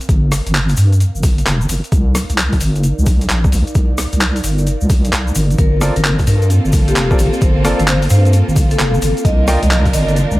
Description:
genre	UK garage, two-step garage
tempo	131 BPM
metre	4/4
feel	swing 65% on 16ths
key	G minor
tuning	A4 = 438 Hz
part	boom bap sampler-style drum kit	drums	0.0-10.3 s	handclaps, hi-hat, rim click	-21 LUFS	equal	overdrive
part	egg shaker	percussion	0.0-10.4 s	none	-28 LUFS	left 2 dB	none
part	airy breathy pad	texture	0.0-10.4 s	Eb3 to F5	-26 LUFS	right 2 dB	chorus, sidechain pumping
part	deep soft wobble bass	bass	0.1-10.4 s	F1 to G2	-14 LUFS	equal	chorus, tube saturation, sidechain pumping
part	electronic kick drum	drums	0.1-9.9 s	none	-14 LUFS	equal	overdrive
part	vibraphone with medium hard mallets	melody	5.6-10.1 s	G4 to Eb5	-22 LUFS	left 2 dB	tape echo
part	rich symphonic violin section	sustained chords	5.6-10.4 s	Bb3 to Bb4	-25 LUFS	right 1 dB	sidechain pumping
part	bright baby grand piano	stabs	5.8-9.6 s	C4 to G5	-21 LUFS	right 1 dB	tape echo
room	studio reverb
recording	vinyl crackle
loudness	-12 LUFS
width	side -18 dB against mid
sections	0.0-10.4 A section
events	fade-in on analog synth pad 0.0-10.4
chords	0.0 Gm7; 1.9 Cm11; 5.6 Gm11; 9.2 Cm11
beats	| 0.09 0.55 1.00 1.46 | 1.92 2.38 2.84 3.29 | 3.75 4.21 4.67 5.13 | 5.58 6.04 6.50 6.96 | 7.42 7.88 8.33 8.79 | 9.25 9.71 10.16

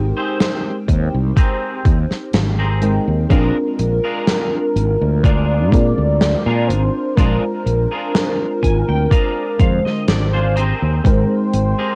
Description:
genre	vaporwave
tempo	62 BPM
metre	4/4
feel	swing 53% on 16ths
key	unclear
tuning	A4 = 440 Hz
part	FM electric piano with soft pad layer	accompaniment	0.0-12.0 s	D3 to G5	-24 LUFS	equal	phaser, lush chorus, cassette tape, tape echo
part	fretless electric bass	bass	0.0-11.7 s	Ab1 to Bb2	-20 LUFS	equal	tube saturation
part	clean electric guitar	riff	0.2-12.0 s	C4 to Ab5	-28 LUFS	equal	ensemble chorus, cassette tape, tape echo
part	gated 80s drum kit	drums	0.4-11.7 s	hi-hat, snare drum	-22 LUFS	equal	cassette tape
part	electronic kick drum	drums	0.9-11.3 s	none	-17 LUFS	equal	cassette tape
part	warm velvety synth lead	melody	3.3-12.0 s	Bb4 to D5	-25 LUFS	equal	chorus, cassette tape, tape echo
room	light reverb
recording	home recording on cassette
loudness	-17 LUFS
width	mono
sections	0.0-12.0 A section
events	clean electric guitar fill 8.1-11.0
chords	0.0 Abmaj9; 3.3 Bb7; 10.6 Abmaj9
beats	0.40 1.37 2.34 | 3.30 4.27 5.24 6.21 | 7.17 8.14 9.11 10.08 | 11.05

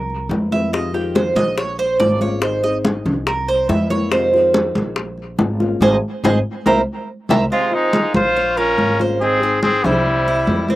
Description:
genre	latin, Cuban son and guajira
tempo	142 BPM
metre	4/4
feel	straight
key	F minor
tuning	A4 = 440 Hz
part	Cuban tres	arpeggios	0.0-10.8 s	C4 to E5	-19 LUFS	right 2 dB	slapback echo
part	upright bass	bass	0.0-10.8 s	Ab1 to F2	-25 LUFS	equal	none
part	congas	percussion	0.1-10.8 s	none	-21 LUFS	equal	none
part	flamenco guitar	accompaniment	0.3-10.8 s	C3 to Ab4	-25 LUFS	left 4 dB	none
part	bongos	percussion	0.3-7.4 s	none	-24 LUFS	left 4 dB	slapback echo
part	warm trumpet	melody	7.5-10.7 s	Eb4 to C5	-18 LUFS	equal	slapback echo
part	bright trumpet	second line	7.5-10.7 s	G3 to F4	-22 LUFS	left 3 dB	slapback echo
room	little or no reverb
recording	recorded outdoors, with no room sound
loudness	-15 LUFS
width	side -16 dB against mid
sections	0.0-7.5 A section; 7.5-10.8 B section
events	Cuban tres solo 0.0-7.5; band accent 5.8-7.5; drum fill 6.9-7.5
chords	0.0 C7; 0.7 Fm7; 1.6 Bbm; 2.4 Ab; 3.3 C7; 4.1 Fm7; 5.0 Bbm; 5.8 Ab; 6.7 C7; 7.5 Fm7; 8.4 Bbm; 9.2 Ab; 10.1 C7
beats	0.31 | 0.73 1.16 1.58 2.01 | 2.43 2.85 3.28 3.70 | 4.13 4.55 4.97 5.40 | 5.82 6.25 6.67 7.09 | 7.52 7.94 8.37 8.79 | 9.21 9.63 10.06 10.48

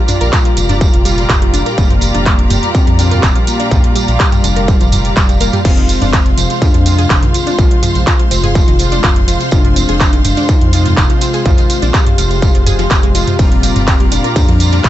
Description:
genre	melodic techno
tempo	124 BPM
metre	4/4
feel	straight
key	F dorian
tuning	A4 = 440 Hz
part	soft octave-layered synth lead	melody	0.0-14.9 s	G3 to G4	-20 LUFS	left 3 dB	chorus, tremolo, dub echo
part	clear symphonic string section	sustained chords	0.0-14.9 s	Ab3 to C6	-22 LUFS	equal	sidechain pumping
part	wide unison pluck	arpeggios	0.0-14.9 s	Eb3 to Bb5	-22 LUFS	equal	sidechain pumping, ping-pong delay
part	analog synth brass	stabs	0.0-14.9 s	Bb2 to F4	-20 LUFS	equal	chorus, sidechain pumping, ping-pong delay
part	techno drum kit	drums	0.1-14.9 s	crash cymbal, handclaps, hi-hat, ride cymbal, toms	-18 LUFS	right 1 dB	overdrive
part	tambourine	percussion	0.1-14.9 s	none	-23 LUFS	right 6 dB	none
part	round analog bass	bass	0.2-14.9 s	F1 to F2	-15 LUFS	equal	sidechain pumping
part	electronic kick drum	drums	0.3-14.9 s	none	-12 LUFS	equal	distortion, overdrive
room	little or no reverb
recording	nothing above 8.0 kHz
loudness	-9 LUFS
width	side -13 dB against mid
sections	0.0-14.9 A section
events	none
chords	0.0 Gm7/F; 5.7 Fm; 13.4 Gm7/F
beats	0.33 0.81 1.29 | 1.78 2.26 2.75 3.23 | 3.71 4.20 4.68 5.17 | 5.65 6.13 6.62 7.10 | 7.58 8.07 8.55 9.04 | 9.52 10.01 10.49 10.97 | 11.46 11.94 12.42 12.91 | 13.39 13.88 14.36 14.84

